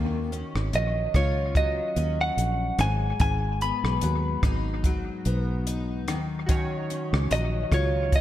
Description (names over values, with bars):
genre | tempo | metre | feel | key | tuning
indie pop, bedroom pop | 73 BPM | 4/4 | swing 55% on 16ths | Eb minor | A4 = 440 Hz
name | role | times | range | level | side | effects
picked steel-string acoustic guitar | accompaniment | 0.0-8.2 s | Ab2 to Gb4 | -32 LUFS | left 3 dB | analog chorus, vibrato effect
fingered electric bass | bass | 0.0-8.2 s | Ab1 to Eb2 | -27 LUFS | equal | none
compact cocktail drum kit | drums | 0.3-8.2 s | hi-hat, kick drum, rim click | -27 LUFS | equal | analog delay
direct-recorded clean electric guitar | melody | 0.8-8.2 s | Db5 to Cb6 | -27 LUFS | equal | lush chorus, analog delay
chorused retro synth keys | accompaniment | 6.5-8.2 s | Db4 to Db5 | -34 LUFS | right 2 dB | cassette tape, analog delay
room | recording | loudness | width
light reverb, small room ambience | echo-heavy mix | -23 LUFS | side -13 dB against mid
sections
0.0-8.2 A section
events
none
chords
0.0 Ebm9; 2.8 Abm7; 6.1 Ebm9